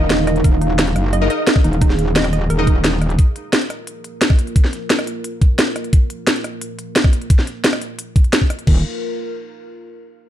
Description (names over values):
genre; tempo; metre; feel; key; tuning
dark technical drum and bass; 175 BPM; 4/4; straight; unclear; A4 = 438 Hz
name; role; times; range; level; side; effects
dark analog pad; sustained chords; 0.0-8.8 s; Bb3 to F5; -27 LUFS; right 2 dB; chorus, phaser, sidechain pumping
orchestra-hit-like synth stab; stabs; 0.0-2.7 s; Eb4 to Eb5; -24 LUFS; left 2 dB; built-in reverb, dub echo
metallic wobble bass; bass; 0.0-3.2, 8.7-8.8 s; Eb1 to Gb1; -17 LUFS; equal; distortion, chorus, tube saturation
warbly dusty pluck; arpeggios; 0.1-2.9 s; Eb4 to Eb5; -26 LUFS; right 3 dB; chorus, sidechain pumping, dub echo
drum and bass drum kit; drums; 0.1-8.7 s; crash cymbal, hi-hat, rim click, snare drum; -18 LUFS; equal; studio reverb
electronic kick drum; drums; 0.4-8.7 s; none; -13 LUFS; equal; studio reverb
room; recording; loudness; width
little or no reverb; dark, warm production; -14 LUFS; side -12 dB against mid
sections
0.0-8.7 A section; 8.7-10.0 B section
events
filter sweep on analog synth pad 0.0-8.7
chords
0.0 Ebsus2; 3.2 Bb5; 8.7 Ebsus2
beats
0.10 | 0.44 0.79 1.13 1.47 | 1.81 2.16 2.50 2.84 | 3.19 3.53 3.87 4.21 | 4.56 4.90 5.24 5.59 | 5.93 6.27 6.62 6.96 | 7.30 7.64 7.99 8.33 | 8.67